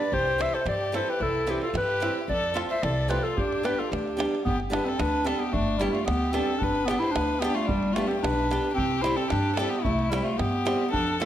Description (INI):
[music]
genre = balkan folk, Balkan wedding band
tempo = 111 BPM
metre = 2/4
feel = straight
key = G mixolydian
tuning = A4 = 441 Hz
[part]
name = mellow clarinet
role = melody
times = 0.0-11.2 s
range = G3 to E5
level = -27 LUFS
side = equal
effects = none
[part]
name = dark violin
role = second line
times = 0.0-11.2 s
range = D4 to C5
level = -31 LUFS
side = left 4 dB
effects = none
[part]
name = upright bass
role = bass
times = 0.1-11.3 s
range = G1 to G2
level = -32 LUFS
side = equal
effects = none
[part]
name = davul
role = percussion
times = 0.1-11.3 s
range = none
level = -34 LUFS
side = right 2 dB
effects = none
[part]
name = flamenco guitar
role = accompaniment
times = 0.4-11.3 s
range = E3 to A4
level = -32 LUFS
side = right 1 dB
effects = none
[sound]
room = moderate scoring stage reverb, RT60 1.5 s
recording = none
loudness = -24 LUFS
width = side -11 dB against mid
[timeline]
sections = 0.0-4.5 A section; 4.5-11.3 A section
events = none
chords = 0.1 C; 2.3 F; 3.4 G; 8.8 C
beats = | 0.12 0.66 | 1.20 1.75 | 2.29 2.83 | 3.37 3.91 | 4.45 5.00 | 5.54 6.08 | 6.62 7.16 | 7.70 8.24 | 8.78 9.31 | 9.85 10.39 | 10.93